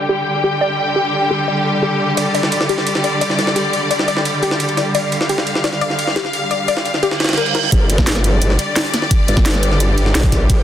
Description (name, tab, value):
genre	dark technical drum and bass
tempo	173 BPM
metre	4/4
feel	straight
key	unclear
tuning	A4 = 440 Hz
part	clear symphonic string section	sustained chords	0.0-10.6 s	D3 to G5	-18 LUFS	left 1 dB	sidechain pumping, low-pass filter
part	warbly dusty pluck	arpeggios	0.1-7.7 s	G4 to D5	-21 LUFS	left 3 dB	chorus, sidechain pumping, dub echo
part	jungle sampler-style drum kit	drums	2.2-10.6 s	ride cymbal, snare drum	-22 LUFS	right 1 dB	high-pass filter on snare, high-pass filter on cymbals
part	reverse cymbal	sound effects	7.1-7.7 s	none	-21 LUFS	right 7 dB	none
part	growl bass	bass	7.7-10.6 s	G1 to Bb1	-16 LUFS	equal	chorus, overdrive, sidechain pumping
part	drum and bass drum kit	drums	7.7-10.6 s	hi-hat, snare drum	-20 LUFS	equal	overdrive
part	electronic kick drum	drums	7.7-10.6 s	none	-14 LUFS	equal	overdrive
room	moderate lush hall reverb, RT60 1.8 s, digital ambience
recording	dense, heavily limited modern master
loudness	-14 LUFS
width	side -10 dB against mid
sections	0.0-7.7 A section; 7.7-10.6 B section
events	filter sweep on string section 0.0-7.7; filter sweep on synth arpeggio sound 0.0-7.7; reverse cymbal 7.1-7.7; drop 7.7-10.6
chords	0.0 G5